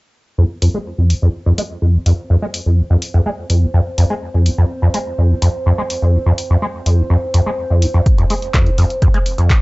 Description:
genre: acid house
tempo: 125 BPM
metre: 4/4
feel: straight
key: F minor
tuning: A4 = 440 Hz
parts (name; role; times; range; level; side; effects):
- dark analog pad; sustained chords; 0.4-9.6 s; C5; -27 LUFS; right 1 dB; lush chorus, sidechain pumping
- acid bass, saw; riff; 0.4-9.5 s; Eb2 to Ab3; -13 LUFS; equal; overdrive, ensemble chorus, sidechain pumping
- punchy analog drum machine; drums; 0.6-9.6 s; handclaps, hi-hat; -24 LUFS; left 1 dB; none
- electronic kick drum; drums; 8.1-9.6 s; none; -14 LUFS; equal; none
room: moderate studio reverb, RT60 0.5 s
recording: dry, gritty hardware recording, transformer saturation, cassette tape, nothing above 7.8 kHz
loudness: -13 LUFS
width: side -23 dB against mid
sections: 0.4-9.6 A section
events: filter sweep on acid bass 0.4-9.6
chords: 0.4 F5

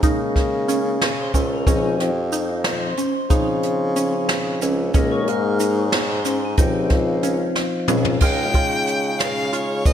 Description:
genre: progressive instrumental, band music in an uneven meter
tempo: 183 BPM (eighths)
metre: 5/8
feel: straight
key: Db lydian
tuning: A4 = 440 Hz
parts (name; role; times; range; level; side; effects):
- percussive tonewheel organ; accompaniment; 0.0-9.9 s; F3 to F5; -24 LUFS; left 3 dB; slow rotary speaker, slapback echo
- glassy wavetable pluck; arpeggios; 0.0-9.9 s; Db4 to F4; -26 LUFS; right 2 dB; chorus, phaser
- mellow bassoon; bass; 0.0-9.9 s; Db2 to Db3; -23 LUFS; equal; none
- jazz brush drum kit; drums; 0.0-9.9 s; crash cymbal, hi-hat, kick drum, snare drum, toms; -21 LUFS; equal; none
- tube shaker; percussion; 0.0-9.9 s; none; -36 LUFS; right 6 dB; none
- clear violin; melody; 8.2-9.9 s; Db5 to G5; -23 LUFS; equal; none
room: moderate scoring stage reverb, RT60 1.9 s, small room ambience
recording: big arena sound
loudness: -18 LUFS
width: side -9 dB against mid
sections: 0.0-8.2 A section; 8.2-9.9 B section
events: tonewheel organ solo 0.0-8.2; drum fill 7.6-8.2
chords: 0.0 Ebsus4/Db; 1.7 Dbmaj7; 4.9 Ebsus4/Db; 6.6 Dbmaj7; 8.2 Db

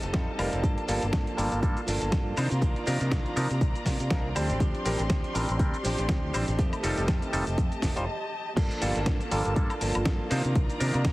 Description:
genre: filtered disco house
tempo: 121 BPM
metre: 4/4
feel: swing 56% on 16ths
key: G minor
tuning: A4 = 445 Hz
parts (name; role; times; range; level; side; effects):
- bright studio string section; sustained chords; 0.0-11.1 s; Bb3 to C6; -36 LUFS; left 1 dB; sidechain pumping, low-pass filter
- direct-recorded clean electric guitar; riff; 0.0-11.1 s; Eb3 to A4; -34 LUFS; right 1 dB; sidechain pumping, low-pass filter
- modern bright fingered electric bass; bass; 0.0-11.1 s; F1 to C3; -30 LUFS; equal; sidechain pumping, low-pass filter
- dusty soul sampler-style drum kit; drums; 0.0-11.1 s; crash cymbal, hi-hat, shaker, snare drum, woodblock; -34 LUFS; equal; sidechain pumping on hats, sidechain pumping on perc, sidechain pumping on cymbals
- maracas; percussion; 0.0-8.1 s; none; -49 LUFS; equal; none
- bright clav; accompaniment; 0.1-11.1 s; Eb3 to C5; -34 LUFS; equal; phaser, vintage 12-bit sampler grit, sidechain pumping, low-pass filter
- electronic kick drum; drums; 0.1-11.1 s; none; -27 LUFS; equal; none
room: light reverb, digital ambience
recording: heavily compressed radio sound, multiband compression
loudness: -25 LUFS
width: side -19 dB against mid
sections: 0.0-8.6 A section; 8.6-11.1 B section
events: break 8.1-8.6; drop 8.6-11.1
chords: 0.0 F9; 0.6 Gm9; 2.4 Cm11; 4.4 Bb69; 6.6 F9; 8.6 Gm9; 10.3 Cm11

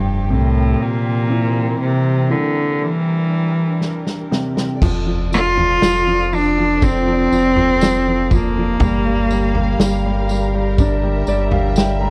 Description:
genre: pop ballad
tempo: 60 BPM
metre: 4/4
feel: straight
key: F major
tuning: A4 = 440 Hz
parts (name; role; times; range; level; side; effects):
- rich cello; melody; 0.0-10.3 s; G2 to F4; -19 LUFS; equal; none
- warm grand piano; accompaniment; 0.0-12.1 s; C3 to Bb5; -25 LUFS; equal; none
- warm studio string section; sustained chords; 0.0-12.1 s; D3 to F5; -29 LUFS; equal; none
- saturated sub bass; bass; 0.0-12.1 s; F1 to C2; -23 LUFS; equal; none
- natural country drum kit; drums; 3.8-12.0 s; crash cymbal, kick drum, snare drum, toms; -22 LUFS; equal; none
- tambourine; percussion; 4.8-12.0 s; none; -38 LUFS; equal; none
room: small room reverb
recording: worn, warbling old tape, cassette tape, warbly pitch drift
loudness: -17 LUFS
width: mono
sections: 0.0-4.8 A section; 4.8-12.1 B section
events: break 0.8-4.8; drum fill 3.8-4.8; grand piano fill 10.8-12.1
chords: 0.3 C7; 4.8 F6; 8.8 Gm7

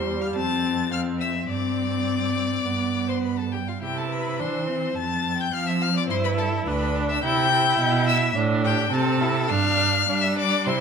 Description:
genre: quick classical-period movement for string quartet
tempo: 105 BPM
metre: 4/4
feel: straight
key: unclear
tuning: A4 = 440 Hz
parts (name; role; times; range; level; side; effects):
- rich violin; melody; 0.0-10.8 s; F5 to A6; -28 LUFS; left 7 dB; none
- warm violin; second line; 0.0-10.8 s; F4 to A5; -28 LUFS; left 2 dB; none
- rich viola; accompaniment; 0.0-10.8 s; G3 to E4; -26 LUFS; left 1 dB; none
- rich cello; bass; 0.0-10.8 s; D2 to G3; -26 LUFS; right 5 dB; none
room: wet recital hall reverb, RT60 1.4 s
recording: minimal, uncompressed stereo recording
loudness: -21 LUFS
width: side -6 dB against mid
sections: 0.0-10.8 A section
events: none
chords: 0.4 F; 1.5 Gsus4; 2.7 G; 3.8 C; 5.0 F5; 6.1 G5; 7.2 C; 8.4 Am; 9.5 G5

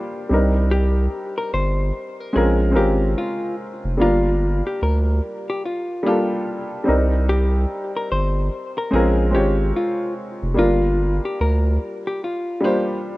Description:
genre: lo-fi hip hop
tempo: 73 BPM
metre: 4/4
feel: swing 61% on 16ths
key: G minor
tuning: A4 = 441 Hz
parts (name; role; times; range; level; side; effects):
- hollow-body jazz guitar; melody; 0.0-13.2 s; F4 to C5; -25 LUFS; left 2 dB; low-pass filter
- warm upright piano; accompaniment; 0.0-13.2 s; G3 to Db5; -22 LUFS; equal; low-pass filter
- saturated sub bass; bass; 0.3-11.8 s; F1 to D2; -19 LUFS; equal; none
room: little or no reverb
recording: rough home demo mix, cassette tape, nothing above 10.5 kHz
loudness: -18 LUFS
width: side -19 dB against mid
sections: 0.0-13.2 A section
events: none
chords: 0.3 Cm7; 2.4 Bbm7; 4.0 Gm7; 6.9 Cm7; 8.9 Bbm7; 10.6 Gm7

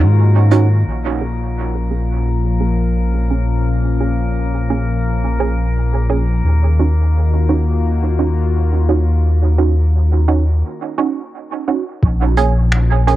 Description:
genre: ambient dub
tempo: 86 BPM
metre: 4/4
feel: swing 58% on 16ths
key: Bb minor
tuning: A4 = 440 Hz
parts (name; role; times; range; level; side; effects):
- warm analog pad; sustained chords; 0.0-13.2 s; Bb2 to Gb4; -23 LUFS; left 7 dB; lush chorus, cassette tape
- filtered dub chord stab; stabs; 0.0-13.2 s; Bb3 to Ab4; -20 LUFS; right 7 dB; analog chorus, cassette tape, dub echo
- round analog bass; bass; 0.0-13.2 s; Bb1 to Ab2; -14 LUFS; equal; none
- drifting glass-harmonics texture; texture; 0.0-10.6 s; Bb3 to Bb4; -28 LUFS; right 1 dB; chorus, built-in reverb, cassette tape
- vintage brush drum kit; drums; 0.5-0.7, 12.4-13.2 s; finger snaps, hi-hat; -25 LUFS; right 1 dB; dub echo
- electronic kick drum; drums; 12.0-12.2 s; none; -14 LUFS; equal; none
room: small room ambience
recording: home recording on cassette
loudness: -14 LUFS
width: side -14 dB against mid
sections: 0.9-12.0 A section; 12.0-13.2 B section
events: break 10.6-12.0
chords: 0.0 Ebm7; 0.9 Bbm7; 6.4 Ebm7; 12.0 Bbm7

